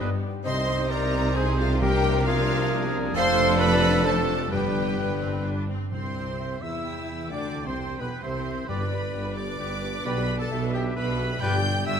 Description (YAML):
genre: classical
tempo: 132 BPM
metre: 3/4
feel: straight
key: C major from 3.2 s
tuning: A4 = 440 Hz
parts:
  - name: clear oboe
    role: second line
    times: 0.0-12.0 s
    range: G4 to G5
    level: -35 LUFS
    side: right 2 dB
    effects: none
  - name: rich symphonic viola section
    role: accompaniment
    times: 0.0-12.0 s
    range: A3 to B4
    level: -34 LUFS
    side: right 1 dB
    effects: none
  - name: warm French horn section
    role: sustained chords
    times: 0.0-11.6 s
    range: F3 to G4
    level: -34 LUFS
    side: left 4 dB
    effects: none
  - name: concert harp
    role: arpeggios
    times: 0.0-12.0 s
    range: E2 to E5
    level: -33 LUFS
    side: left 10 dB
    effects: none
  - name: clear trumpet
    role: stabs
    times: 0.0-11.6 s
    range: A4 to E5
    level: -35 LUFS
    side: right 4 dB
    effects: none
  - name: rich symphonic cello section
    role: bass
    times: 0.0-12.0 s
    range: F2 to E3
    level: -32 LUFS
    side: right 2 dB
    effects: none
  - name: warm symphonic double bass section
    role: bass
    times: 0.0-12.0 s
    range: F1 to E2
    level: -32 LUFS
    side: right 3 dB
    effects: none
  - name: warm tuba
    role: bass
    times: 0.0-12.0 s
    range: F1 to E2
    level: -34 LUFS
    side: right 5 dB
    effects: none
  - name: rich symphonic violin section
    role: melody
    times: 0.4-12.0 s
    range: F5 to G6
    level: -32 LUFS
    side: left 1 dB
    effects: none
  - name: clear symphonic violin section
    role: second line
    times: 0.4-12.0 s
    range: F4 to G5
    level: -36 LUFS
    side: left 1 dB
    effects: none
  - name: warm clarinet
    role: second line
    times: 0.4-12.0 s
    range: F4 to G5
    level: -32 LUFS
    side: equal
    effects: none
  - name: mellow hollow silver concert flute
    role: second line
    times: 0.5-12.0 s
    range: G4 to G5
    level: -33 LUFS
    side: left 1 dB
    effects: none
  - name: timpani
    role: percussion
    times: 1.8-2.4, 5.9-6.6, 8.7-9.3 s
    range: G2 to C3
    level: -37 LUFS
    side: equal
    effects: none
room: moderate concert hall reverb, RT60 2.0 s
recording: none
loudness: -23 LUFS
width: side -7 dB against mid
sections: 0.0-5.9 A section; 5.9-12.0 B section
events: none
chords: 0.0 G; 0.5 Cm; 1.8 Bb/C; 3.2 Dm7/F; 4.5 G; 5.9 C; 8.7 G; 10.1 G/B; 11.4 G7